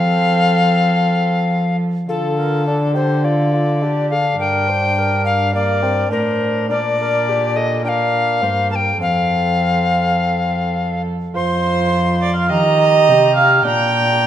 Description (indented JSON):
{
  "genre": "classical, renaissance-style consort dance",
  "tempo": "104 BPM",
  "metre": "4/4",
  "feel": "straight",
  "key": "F mixolydian",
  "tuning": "A4 = 440 Hz",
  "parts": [
    { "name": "alto recorder", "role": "melody", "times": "0.0-14.3 s", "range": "A4 to C6", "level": "-19 LUFS", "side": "left 4 dB", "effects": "none" },
    { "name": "warm viola", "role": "second line", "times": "0.0-14.3 s", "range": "G4 to G5", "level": "-20 LUFS", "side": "right 5 dB", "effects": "none" },
    { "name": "warm bassoon", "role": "accompaniment", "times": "0.0-14.3 s", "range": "Bb3 to G4", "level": "-23 LUFS", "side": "left 1 dB", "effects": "none" },
    { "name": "dark cello", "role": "bass", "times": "0.0-14.3 s", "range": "F2 to F3", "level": "-19 LUFS", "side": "equal", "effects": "none" }
  ],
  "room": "moderate recital hall reverb, RT60 1.5 s",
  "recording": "none",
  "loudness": "-14 LUFS",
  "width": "side -10 dB against mid",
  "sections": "0.0-2.1 A section; 2.1-11.3 B section; 11.3-14.3 C section",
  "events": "none",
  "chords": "0.0 F; 2.1 Dm; 4.4 Gm; 9.0 F; 11.3 F5; 12.5 Eb; 13.7 Bb",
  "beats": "0.34 0.92 1.51 | 2.09 2.67 3.25 3.82 | 4.40 4.97 5.54 6.12 | 6.70 7.27 7.84 8.42 | 9.01 9.59 10.18 10.76 | 11.35 11.93 12.50 13.08 | 13.65 14.23"
}